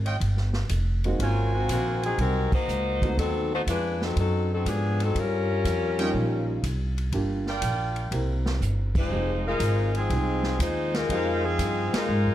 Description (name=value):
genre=jazz, big band swing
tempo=121 BPM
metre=4/4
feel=swing 69% on 8ths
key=Eb mixolydian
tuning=A4 = 436 Hz
part: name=upright bass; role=bass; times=0.0-12.3 s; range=F1 to Ab2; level=-26 LUFS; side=equal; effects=none
part: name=clear trumpet section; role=stabs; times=0.1-2.6, 6.0-12.3 s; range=Eb4 to Ab5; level=-32 LUFS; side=right 4 dB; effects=none
part: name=swinging big-band drum kit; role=drums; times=0.1-12.0 s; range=crash cymbal, hi-hat, kick drum, ride cymbal, snare drum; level=-32 LUFS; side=equal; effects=none
part: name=warm baby grand piano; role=accompaniment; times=1.1-11.4 s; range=F3 to Bb4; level=-32 LUFS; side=right 2 dB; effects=none
part: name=warm saxophone section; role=melody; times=1.2-12.3 s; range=Eb3 to C5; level=-27 LUFS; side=left 3 dB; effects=none
room=light reverb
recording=dark, warm production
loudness=-23 LUFS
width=side -12 dB against mid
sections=0.0-12.3 A section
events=band accent 2.4, 8.9, 11.8; drum fill 8.6-9.1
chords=0.2 Ebadd9; 1.2 Ab9; 3.2 Adim7; 5.2 Eb9; 7.1 Gm7; 8.1 C7; 9.1 Fm7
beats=0.21 0.70 | 1.20 1.69 2.19 2.68 | 3.18 3.67 4.17 4.66 | 5.16 5.65 6.15 6.64 | 7.13 7.63 8.12 8.62 | 9.11 9.61 10.11 10.60 | 11.10 11.59 12.09